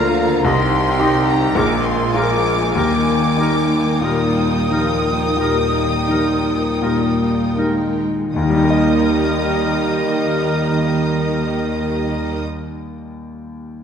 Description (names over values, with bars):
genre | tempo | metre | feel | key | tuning
classical | 39-58 BPM | 4/4 | rubato | Eb major | A4 = 438 Hz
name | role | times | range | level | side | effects
bright grand piano | melody | 0.0-13.8 s | Bb1 to Eb5 | -19 LUFS | left 2 dB | none
warm symphonic violin section | melody | 0.0-12.4 s | Bb5 to Eb6 | -28 LUFS | left 2 dB | none
bright silver concert flute | second line | 0.0-12.4 s | Eb5 to Eb6 | -27 LUFS | left 1 dB | none
warm clarinet | second line | 0.0-12.5 s | G4 to Ab4 | -29 LUFS | right 2 dB | none
warm oboe | second line | 0.0-12.4 s | Bb4 to Eb5 | -28 LUFS | right 1 dB | none
warm symphonic violin section | second line | 0.0-12.4 s | G4 to Ab5 | -28 LUFS | left 1 dB | none
rich symphonic viola section | accompaniment | 0.0-12.4 s | Bb3 to F4 | -26 LUFS | right 2 dB | none
mellow French horn section | sustained chords | 0.0-12.4 s | Bb3 to Bb4 | -27 LUFS | left 4 dB | none
warm trombone section | sustained chords | 0.0-12.4 s | D3 to Ab3 | -27 LUFS | right 4 dB | none
dark symphonic double bass section | bass | 0.0-12.4 s | Bb1 to Eb2 | -27 LUFS | right 3 dB | none
rich symphonic cello section | bass | 0.0-12.4 s | Bb2 to Ab3 | -27 LUFS | right 4 dB | none
timpani | percussion | 8.3-12.4 s | none | barely audible | none | none
room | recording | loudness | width
wet scoring stage reverb, RT60 1.7 s | none | -15 LUFS | side -7 dB against mid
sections
0.0-8.3 A section; 8.3-13.8 B section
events
slowing down 0.0-8.3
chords
0.4 Cm; 1.6 Bb7; 2.7 Eb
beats
0.45 1.55 | 2.75 4.03 5.39 6.82 | 8.34 9.87 11.39 12.92